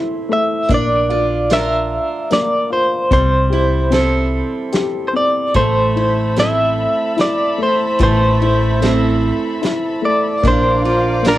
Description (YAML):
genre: acoustic folk-pop ballad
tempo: 74 BPM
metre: 3/4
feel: straight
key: A minor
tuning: A4 = 440 Hz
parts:
  - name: direct-recorded clean electric guitar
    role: melody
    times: 0.0-11.4 s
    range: Bb4 to E5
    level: -17 LUFS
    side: equal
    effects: tremolo
  - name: warm baby grand piano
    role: accompaniment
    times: 0.0-11.4 s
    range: E3 to Bb4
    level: -22 LUFS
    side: left 6 dB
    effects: cassette tape
  - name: picked steel-string acoustic guitar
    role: arpeggios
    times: 0.0-11.4 s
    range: G3 to Bb4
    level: -21 LUFS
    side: right 6 dB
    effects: cassette tape
  - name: upright bass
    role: bass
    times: 0.7-11.4 s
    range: A1 to C2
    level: -18 LUFS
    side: equal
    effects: none
  - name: unplugged drum kit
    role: drums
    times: 0.7-11.4 s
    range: hi-hat, kick drum, snare drum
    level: -20 LUFS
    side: equal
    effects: cassette tape
  - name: warm chamber string section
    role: sustained chords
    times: 5.5-11.4 s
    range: A4 to D6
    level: -27 LUFS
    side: left 2 dB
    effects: cassette tape
room: small room ambience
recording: home recording on cassette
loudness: -13 LUFS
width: side -15 dB against mid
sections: 0.0-11.4 A section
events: none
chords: 0.0 Am; 0.7 Bb; 3.1 C6; 5.6 Amadd9; 10.4 Bb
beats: | 0.69 1.50 2.30 | 3.11 3.92 4.74 | 5.55 6.37 7.18 | 8.00 8.81 9.62 | 10.43 11.24